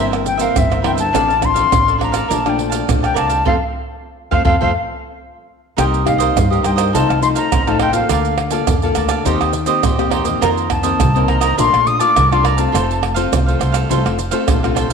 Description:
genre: samba and choro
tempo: 103 BPM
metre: 4/4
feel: straight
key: unclear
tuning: A4 = 440 Hz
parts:
  - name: jazz flute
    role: melody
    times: 0.0-13.2 s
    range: E5 to Eb6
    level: -18 LUFS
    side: left 3 dB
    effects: none
  - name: cavaquinho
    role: accompaniment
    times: 0.0-14.9 s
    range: D4 to A5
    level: -22 LUFS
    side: right 8 dB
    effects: none
  - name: nylon-string guitar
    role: accompaniment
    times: 0.0-14.9 s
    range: F2 to A4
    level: -21 LUFS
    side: left 9 dB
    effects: none
  - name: upright bass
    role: bass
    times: 0.0-14.9 s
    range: F1 to G2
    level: -20 LUFS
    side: equal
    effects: none
  - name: maracas, pandeiro, tamborim and surdo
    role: percussion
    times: 0.1-14.9 s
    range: none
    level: -19 LUFS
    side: right 4 dB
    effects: none
room: wet echo chamber reverb, RT60 1.6 s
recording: 1960s-style stereo with parts hard left and right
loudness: -13 LUFS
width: side -6 dB against mid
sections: 0.0-5.8 A section; 5.8-14.9 B section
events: band accent 3.5-5.8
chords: 0.0 C7/G; 1.1 F6/A; 2.3 Bbmaj7; 3.5 F; 5.8 Cm7; 6.9 F7/C; 8.1 Bbmaj7/D; 9.3 Eb6; 10.4 F7sus4; 11.6 Bbmaj7; 12.7 F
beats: 0.56 | 1.14 1.72 2.30 2.88 | 3.46 4.04 4.62 5.20 | 5.78 6.36 6.94 7.52 | 8.10 8.68 9.26 9.84 | 10.42 11.00 11.58 12.16 | 12.74 13.32 13.90 14.48

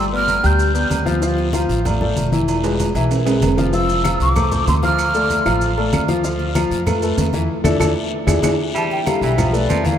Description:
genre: latin, salsa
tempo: 191 BPM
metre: 4/4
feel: straight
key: unclear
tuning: A4 = 440 Hz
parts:
  - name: breathy mellow jazz flute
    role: melody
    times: 0.0-0.9, 3.7-6.1, 8.8-10.0 s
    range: D5 to G6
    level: -22 LUFS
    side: right 1 dB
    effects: none
  - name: warm grand piano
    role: accompaniment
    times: 0.0-10.0 s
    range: E3 to G5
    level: -20 LUFS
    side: left 3 dB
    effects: none
  - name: upright bass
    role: bass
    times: 0.0-10.0 s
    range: E1 to F2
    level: -21 LUFS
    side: right 1 dB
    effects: none
  - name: congas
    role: percussion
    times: 0.1-10.0 s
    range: none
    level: -24 LUFS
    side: left 1 dB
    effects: none
  - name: agogo bells and timbales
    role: percussion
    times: 0.3-10.0 s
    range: none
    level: -26 LUFS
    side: right 7 dB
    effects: none
  - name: guiro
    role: percussion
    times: 0.3-10.0 s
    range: none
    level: -34 LUFS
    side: left 8 dB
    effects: none
  - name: maracas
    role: percussion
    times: 0.3-10.0 s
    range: none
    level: -35 LUFS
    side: right 7 dB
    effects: none
  - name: claves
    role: percussion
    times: 4.0-9.5 s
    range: none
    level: -34 LUFS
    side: right 6 dB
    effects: none
  - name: raspy baritone saxophone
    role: second line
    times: 8.7-9.9 s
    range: E3 to G3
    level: -25 LUFS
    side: right 4 dB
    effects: none
room: wet cathedral reverb, RT60 5.4 s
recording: in a vast, echoing space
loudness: -15 LUFS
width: side -9 dB against mid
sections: 0.0-8.8 A section; 8.8-10.0 B section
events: drum fill 2.5-3.7, 7.8-8.8; band accent 7.5-8.8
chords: 0.0 G; 1.2 Dmadd9; 2.5 E; 3.7 F; 5.0 Dm; 6.2 Bm7b5/D; 7.5 E7sus4; 8.1 E7; 8.8 A5; 9.4 Bm7b5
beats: 0.28 0.59 0.91 | 1.22 1.54 1.85 2.17 | 2.48 2.79 3.11 3.42 | 3.73 4.05 4.36 4.68 | 4.99 5.30 5.62 5.93 | 6.25 6.56 6.87 7.19 | 7.50 7.81 8.13 8.44 | 8.76 9.07 9.38 9.70

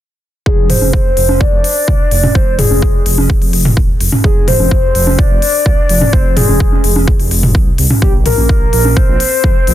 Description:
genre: progressive house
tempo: 127 BPM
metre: 4/4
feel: straight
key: F dorian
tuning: A4 = 439 Hz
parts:
  - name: soft octave-layered synth lead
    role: melody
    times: 0.5-9.7 s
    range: G4 to D5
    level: -16 LUFS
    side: left 2 dB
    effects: chorus, phaser, sidechain pumping, tape echo
  - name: dark detuned saw bass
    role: bass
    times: 0.5-9.7 s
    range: Eb1 to F2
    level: -15 LUFS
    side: equal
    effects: tube saturation, sidechain pumping
  - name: electronic kick drum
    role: drums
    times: 0.5-9.5 s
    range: none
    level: -12 LUFS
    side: equal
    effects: overdrive
  - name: electronic hi-hat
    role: drums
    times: 0.7-9.7 s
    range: none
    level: -18 LUFS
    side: left 4 dB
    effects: overdrive
  - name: electronic toms and congas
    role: percussion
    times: 0.7-8.9 s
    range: none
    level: -16 LUFS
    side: right 1 dB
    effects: sidechain pumping on toms, sidechain pumping on perc
room: digital ambience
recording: dense, heavily limited modern master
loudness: -9 LUFS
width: side -12 dB against mid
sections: 0.5-9.7 A section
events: none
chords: 0.5 Fm; 8.0 Bb5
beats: | 0.46 0.93 1.41 1.88 | 2.35 2.82 3.30 3.77 | 4.24 4.71 5.19 5.66 | 6.13 6.60 7.08 7.55 | 8.02 8.49 8.97 9.44

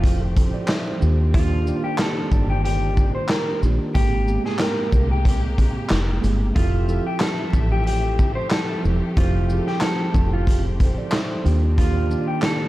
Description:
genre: hip hop, boom-bap hip-hop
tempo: 92 BPM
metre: 4/4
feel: swing 55% on 16ths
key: F major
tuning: A4 = 440 Hz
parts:
  - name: electric guitar at the edge of break-up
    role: melody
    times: 0.0-12.7 s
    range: F4 to C5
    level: -28 LUFS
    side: left 1 dB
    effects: high-pass filter, low-pass filter, ping-pong delay
  - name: mellow tine electric piano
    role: accompaniment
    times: 0.0-12.7 s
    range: Ab2 to E5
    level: -26 LUFS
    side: right 2 dB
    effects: slow stereo tremolo, high-pass filter, low-pass filter
  - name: warm studio string section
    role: sustained chords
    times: 0.0-12.7 s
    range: C3 to E5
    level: -34 LUFS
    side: left 1 dB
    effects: high-pass filter, low-pass filter
  - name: deep dub fingered electric bass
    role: bass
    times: 0.0-12.1 s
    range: E1 to Eb2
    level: -21 LUFS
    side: equal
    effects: none
  - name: raw garage drum kit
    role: drums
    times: 0.0-12.6 s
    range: handclaps, hi-hat, kick drum, shaker, snare drum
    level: -22 LUFS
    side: equal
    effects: none
room: studio ambience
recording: dark, warm production, vinyl crackle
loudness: -18 LUFS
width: side -16 dB against mid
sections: 0.0-12.7 A section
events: none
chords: 0.0 Fmaj9; 1.0 Ebmaj9; 4.0 Abmaj9; 6.6 Fmaj9; 11.5 Ebmaj9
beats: 0.04 0.69 | 1.34 2.00 2.65 3.30 | 3.95 4.60 5.26 5.91 | 6.56 7.21 7.87 8.52 | 9.17 9.82 10.47 11.13 | 11.78 12.43

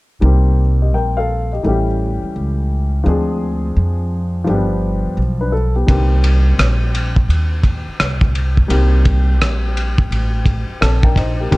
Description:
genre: hip hop, jazz-hop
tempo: 85 BPM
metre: 4/4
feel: swing 66% on 16ths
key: C dorian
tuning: A4 = 440 Hz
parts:
  - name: dark upright piano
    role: accompaniment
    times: 0.2-11.6 s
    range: D3 to A5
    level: -21 LUFS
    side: left 2 dB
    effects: none
  - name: upright bass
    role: bass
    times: 0.2-11.6 s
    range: G1 to F2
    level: -16 LUFS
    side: equal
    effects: none
  - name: cloth-damped thuddy drum kit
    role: drums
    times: 5.9-11.6 s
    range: hi-hat, kick drum, ride cymbal, rim click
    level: -17 LUFS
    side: equal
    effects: vintage 12-bit sampler grit
room: studio ambience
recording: dark, warm production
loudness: -14 LUFS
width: side -21 dB against mid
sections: 0.2-11.5 A section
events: upright piano fill 10.5-11.5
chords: 0.2 Cm7; 1.6 A7; 3.1 Dm7b5; 4.5 G7; 5.9 Cm7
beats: | 0.23 0.94 1.64 2.35 | 3.06 3.76 4.47 5.17 | 5.88 6.58 7.29 8.00 | 8.70 9.41 10.11 10.82 | 11.53

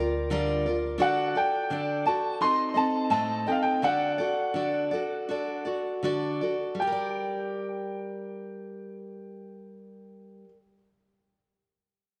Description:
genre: acoustic folk duo or small band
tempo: 77-87 BPM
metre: 4/4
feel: straight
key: G minor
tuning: A4 = 440 Hz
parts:
  - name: picked steel-string acoustic guitar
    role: accompaniment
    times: 0.0-10.6 s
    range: A2 to Eb5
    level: -32 LUFS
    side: equal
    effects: none
  - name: upright bass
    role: bass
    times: 0.0-1.0 s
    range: D2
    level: -37 LUFS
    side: equal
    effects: none
  - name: bright upright piano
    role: melody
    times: 1.0-10.4 s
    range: F5 to C6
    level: -30 LUFS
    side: equal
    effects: tape echo
room: wet plate reverb, RT60 2.3 s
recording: none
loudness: -28 LUFS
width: mono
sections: 0.0-6.8 A section; 6.8-9.9 B section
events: slowing down 1.0-6.8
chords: 0.0 Bb6/D; 1.0 D; 2.4 Adim; 3.8 D; 6.8 Gm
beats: 0.32 | 1.01 1.70 2.40 3.11 | 3.82 4.54 5.28 6.03 | 6.80 7.58 8.36 9.13

